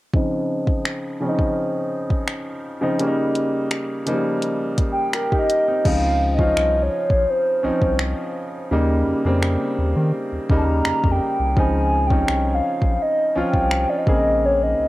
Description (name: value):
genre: contemporary R&B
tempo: 84 BPM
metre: 4/4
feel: straight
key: Db lydian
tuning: A4 = 440 Hz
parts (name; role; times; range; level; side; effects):
- clear concert grand piano; accompaniment; 0.1-14.9 s; Db3 to Bb4; -22 LUFS; equal; low-pass filter, cassette tape
- smooth R&B drum kit; drums; 0.1-14.2 s; crash cymbal, finger snaps, hi-hat, kick drum; -22 LUFS; equal; cassette tape
- hollow clarinet-like synth lead; melody; 4.9-14.9 s; C5 to Bb5; -20 LUFS; equal; chorus, cassette tape, analog delay
- round analog bass; bass; 5.9-14.9 s; Bb1 to Eb3; -22 LUFS; equal; none
room: light reverb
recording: home recording on cassette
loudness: -18 LUFS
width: side -17 dB against mid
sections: 0.1-5.9 A section; 5.9-14.9 B section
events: filter sweep on grand piano 0.1-5.9; hi-hats muted 5.9-14.9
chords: 0.1 Dbmaj9; 3.0 Eb7; 5.9 Dbmaj9; 8.7 Eb7; 11.6 Dbmaj9; 14.1 Bbm9